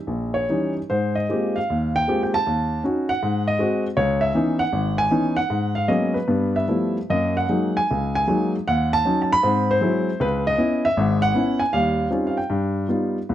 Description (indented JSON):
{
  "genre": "solo jazz",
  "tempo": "155 BPM",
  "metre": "4/4",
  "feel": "swing 66% on 8ths, rubato",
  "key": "unclear",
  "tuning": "A4 = 440 Hz",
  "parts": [
    { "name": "warm baby grand piano", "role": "solo", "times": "0.0-13.3 s", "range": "Ab1 to Cb6", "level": "-19 LUFS", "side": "equal", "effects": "none" }
  ],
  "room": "light reverb",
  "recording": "dark, warm production",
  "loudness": "-19 LUFS",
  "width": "side -12 dB against mid",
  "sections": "0.9-13.3 A section",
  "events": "none",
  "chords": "0.0 Eb7b9; 0.9 Abmaj13; 2.5 Ebm7b5; 3.2 Ab7; 4.0 Dbm9; 5.5 Abm11; 6.3 G13; 7.1 Gb69; 8.7 Ebm7b5; 9.4 Abaug7; 10.2 Dbm7; 11.7 Eb13; 12.5 Gaug7",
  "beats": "0.08 0.49 | 0.90 1.29 1.69 2.08 | 2.47 2.85 3.22 3.60 | 3.98 4.35 4.74 5.12 | 5.50 5.90 6.29 6.70 | 7.10 7.50 7.89 8.28 | 8.67 9.06 9.44 9.83 | 10.21 10.59 10.97 11.35 | 11.73 12.11 12.50 12.90 | 13.31"
}